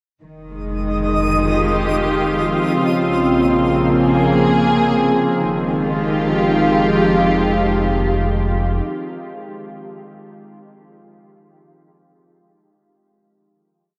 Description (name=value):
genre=ambient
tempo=69 BPM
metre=3/4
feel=straight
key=F minor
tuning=A4 = 440 Hz
part: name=dark studio string section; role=sustained chords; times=0.2-8.8 s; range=Db3 to Ab4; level=-19 LUFS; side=equal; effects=none
part: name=round analog bass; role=bass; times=0.2-8.8 s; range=F1 to Bb1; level=-28 LUFS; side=equal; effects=none
part: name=organ-like drone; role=drone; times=1.6-8.9 s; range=F3 to C4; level=-24 LUFS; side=equal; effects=ensemble chorus, built-in reverb
part: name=twinkling granular texture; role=texture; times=0.8-5.5 s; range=Eb5 to Eb6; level=-28 LUFS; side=equal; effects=built-in reverb
room=wet cathedral reverb, RT60 6.0 s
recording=in a vast, echoing space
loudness=-17 LUFS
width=mono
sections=0.2-5.4 A section; 5.4-8.0 final chord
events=fade-out on analog synth bass 0.2-5.4; fade-out on synth texture 0.2-5.4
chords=0.2 Fm9; 2.8 Bbm7; 5.4 Fm9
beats=| 0.22 1.09 1.96 | 2.83 3.70 4.57 | 5.44 6.31 7.18